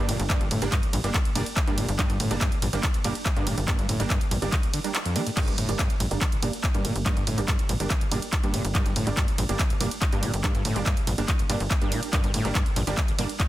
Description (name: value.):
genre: driving peak-time techno.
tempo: 142 BPM.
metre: 4/4.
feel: straight.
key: G minor.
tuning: A4 = 442 Hz.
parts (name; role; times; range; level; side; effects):
screaming distorted acid line; riff; 0.0-13.2 s; G1 to G3; -31 LUFS; equal; distortion, analog chorus, sidechain pumping, tape echo.
rave stab; stabs; 0.0-13.3 s; G3 to D4; -32 LUFS; right 4 dB; chorus, built-in reverb, cassette tape, sidechain pumping, tape echo.
tight sequencer bass; bass; 0.0-13.3 s; G1 to G2; -29 LUFS; equal; sidechain pumping.
techno drum kit; drums; 0.1-13.5 s; crash cymbal, handclaps, hi-hat, ride cymbal; -29 LUFS; right 1 dB; none.
electronic kick drum; drums; 0.3-13.5 s; none; -26 LUFS; equal; none.
room: little or no reverb.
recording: dense, heavily limited modern master.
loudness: -23 LUFS.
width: side -15 dB against mid.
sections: 0.0-13.5 A section.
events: none.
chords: 0.0 Gm.